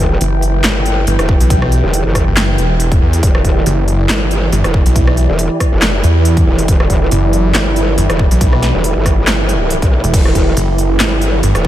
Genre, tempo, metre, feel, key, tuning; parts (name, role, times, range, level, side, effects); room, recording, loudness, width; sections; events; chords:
heavy wobble dubstep; 139 BPM; 4/4; swing 55% on 16ths, half-time; E minor; A4 = 439 Hz
rich studio string section; sustained chords; 0.0-11.7 s; E3 to D5; -22 LUFS; left 1 dB; sidechain pumping, low-pass filter
growl bass; bass; 0.0-11.7 s; E1 to B1; -16 LUFS; equal; chorus, overdrive
deep dark ambient pad; texture; 0.0-11.7 s; E4 to G5; -21 LUFS; right 3 dB; chorus, built-in reverb, sidechain pumping
snarling distorted saw bass; bass; 0.2-11.5 s; E1 to E2; -12 LUFS; equal; distortion, overdrive
big-room dance drum kit; drums; 0.2-11.6 s; crash cymbal, handclaps, hi-hat, ride cymbal, rim click, snare drum; -19 LUFS; equal
electronic kick drum; drums; 1.3-11.7 s; -13 LUFS; equal
light reverb; -10 LUFS; side -13 dB against mid
0.0-11.7 A section
0.0 Em